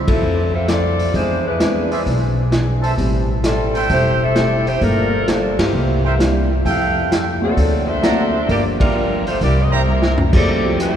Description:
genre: jazz, big band swing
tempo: 131 BPM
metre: 4/4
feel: swing 68% on 8ths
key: F major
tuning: A4 = 440 Hz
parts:
  - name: vintage hollow-body jazz guitar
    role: accompaniment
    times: 0.0-11.0 s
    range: G2 to A4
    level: -27 LUFS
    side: left 2 dB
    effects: none
  - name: warm trumpet section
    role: stabs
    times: 0.0-9.8 s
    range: E4 to Bb5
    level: -25 LUFS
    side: right 2 dB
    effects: none
  - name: upright bass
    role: bass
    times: 0.0-11.0 s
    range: E1 to G2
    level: -20 LUFS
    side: equal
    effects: none
  - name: dark saxophone section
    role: melody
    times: 0.1-11.0 s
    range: E3 to E5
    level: -20 LUFS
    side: left 1 dB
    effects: none
  - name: vintage drum kit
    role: drums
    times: 0.1-10.9 s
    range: crash cymbal, hi-hat, kick drum, ride cymbal, snare drum, toms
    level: -22 LUFS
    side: equal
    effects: none
  - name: dark concert grand piano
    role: accompaniment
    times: 1.1-11.0 s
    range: F3 to A4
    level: -25 LUFS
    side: equal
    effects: none
room: wet cathedral reverb, RT60 5.2 s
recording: recorded in a church or concert hall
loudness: -14 LUFS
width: side -9 dB against mid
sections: 0.0-10.3 A section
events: band accent 0.0, 5.5, 8.7; drum fill 9.9-10.3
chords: 0.0 Dm9; 1.1 E7b13; 3.0 Am7; 4.8 Gm9; 5.7 C7; 6.7 Fmaj9; 7.6 D7b13; 8.5 Gm7; 9.4 C7; 10.3 Fmaj9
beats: 0.22 0.68 | 1.14 1.60 2.06 2.52 | 2.98 3.44 3.90 4.35 | 4.81 5.27 5.73 6.19 | 6.65 7.11 7.57 8.03 | 8.49 8.95 9.41 9.87 | 10.33 10.79

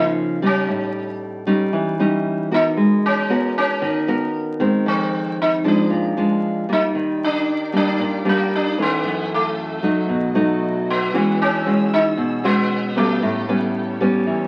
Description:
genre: bossa nova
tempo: 115 BPM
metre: 4/4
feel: straight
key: unclear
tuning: A4 = 438 Hz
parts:
  - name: sitar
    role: melody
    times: 0.0-14.0 s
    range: A3 to Eb4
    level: -24 LUFS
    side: equal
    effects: none
  - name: nylon-string guitar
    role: accompaniment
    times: 0.0-14.5 s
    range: F2 to Bb4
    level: -21 LUFS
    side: equal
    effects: none
  - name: warm symphonic string section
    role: sustained chords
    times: 7.0-14.5 s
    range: B3 to E6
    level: -36 LUFS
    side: equal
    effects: none
room: light reverb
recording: very old 78 rpm record, vinyl crackle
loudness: -20 LUFS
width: mono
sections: 0.0-14.5 A section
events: none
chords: 0.0 Gbmaj7 (rootless); 0.7 A7#11; 2.8 Abm9; 4.9 Fm7; 5.9 Bb7; 7.0 Ebmaj7; 9.0 Gbm7; 10.1 B7; 11.1 E69; 13.2 A9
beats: 0.17 | 0.69 1.21 1.73 2.26 | 2.78 3.30 3.83 4.35 | 4.87 5.39 5.92 6.44 | 6.96 7.48 8.01 8.53 | 9.05 9.57 10.09 10.62 | 11.14 11.66 12.18 12.71 | 13.23 13.75 14.27

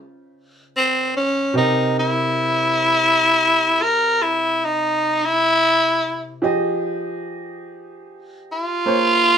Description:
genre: blues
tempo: 49 BPM (dotted quarters)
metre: 12/8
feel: straight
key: unclear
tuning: A4 = 437 Hz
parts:
  - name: clear upright piano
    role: accompaniment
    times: 0.0-9.4 s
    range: C3 to Eb5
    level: -24 LUFS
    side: right 2 dB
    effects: none
  - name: growling tenor saxophone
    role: melody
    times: 0.8-9.4 s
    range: C4 to Bb4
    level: -16 LUFS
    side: equal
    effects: none
room: moderate studio ambience, RT60 0.5 s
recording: band playing live in one room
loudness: -16 LUFS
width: side -8 dB against mid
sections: 0.0-9.4 A section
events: tenor saxophone solo 0.0-9.4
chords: 0.0 Dbmaj7; 1.5 C7#9; 6.4 Fm7; 8.9 Bbm7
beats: 0.32 | 1.54 2.76 3.98 5.21 | 6.43 7.65 8.87

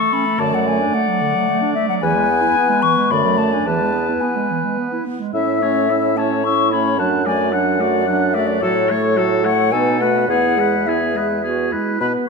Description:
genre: quick classical-period movement for wind quintet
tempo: 109 BPM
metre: 3/4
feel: rubato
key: E major from 8.6 s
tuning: A4 = 439 Hz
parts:
  - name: concert flute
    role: melody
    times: 0.0-12.1 s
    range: C#5 to C#6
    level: -20 LUFS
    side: left 10 dB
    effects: none
  - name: clear oboe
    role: second line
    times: 0.0-12.1 s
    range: G#4 to F#5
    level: -23 LUFS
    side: equal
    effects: none
  - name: clear French horn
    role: accompaniment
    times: 0.0-12.3 s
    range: F#3 to C#4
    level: -24 LUFS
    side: left 1 dB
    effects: none
  - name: warm clarinet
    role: accompaniment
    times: 0.0-12.1 s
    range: D3 to B4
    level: -22 LUFS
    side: right 9 dB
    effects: none
  - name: warm bassoon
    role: bass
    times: 0.4-12.1 s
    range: E2 to B2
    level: -22 LUFS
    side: right 4 dB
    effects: none
room: wet scoring stage reverb, RT60 1.7 s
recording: dark, warm production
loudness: -15 LUFS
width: side -4 dB against mid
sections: 0.0-12.0 A section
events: none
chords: 0.4 D/F#; 2.0 E; 3.1 D/F#; 3.7 E; 5.3 A; 7.0 D/F#; 8.6 F#m/A; 9.7 B7; 10.3 E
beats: | 0.39 0.94 1.48 | 2.02 2.56 3.10 | 3.66 4.21 4.78 | 5.34 5.90 6.45 | 7.00 7.54 8.08 | 8.62 9.17 9.72 | 10.28 10.86 11.43 | 12.01

